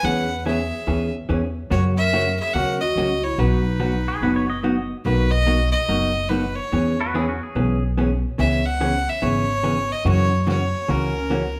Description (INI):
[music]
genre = country, western swing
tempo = 144 BPM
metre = 4/4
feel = swing 64% on 8ths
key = B major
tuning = A4 = 440 Hz
[part]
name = clear fiddle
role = melody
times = 0.0-11.6 s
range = A#4 to F#5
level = -26 LUFS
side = equal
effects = none
[part]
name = warm clarinet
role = second line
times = 0.0-4.6, 10.9-11.6 s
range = C#4 to B4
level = -32 LUFS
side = equal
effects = none
[part]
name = vintage hollow-body jazz guitar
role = accompaniment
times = 0.0-11.4 s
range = B2 to G#4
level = -26 LUFS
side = equal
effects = none
[part]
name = upright bass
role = bass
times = 0.0-11.6 s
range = F#1 to F#2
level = -26 LUFS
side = equal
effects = none
[part]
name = pedal steel guitar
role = second line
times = 4.1-7.8 s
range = C#4 to D#5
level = -30 LUFS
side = equal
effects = none
[sound]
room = moderate large studio reverb, RT60 1.1 s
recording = band playing live in one room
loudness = -21 LUFS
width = mono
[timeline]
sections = 0.0-5.1 A section; 5.1-11.6 A section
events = none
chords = 0.0 E6; 1.7 F#; 3.4 B; 5.1 Bmaj7; 6.7 E6; 8.4 C#m7; 10.1 F#7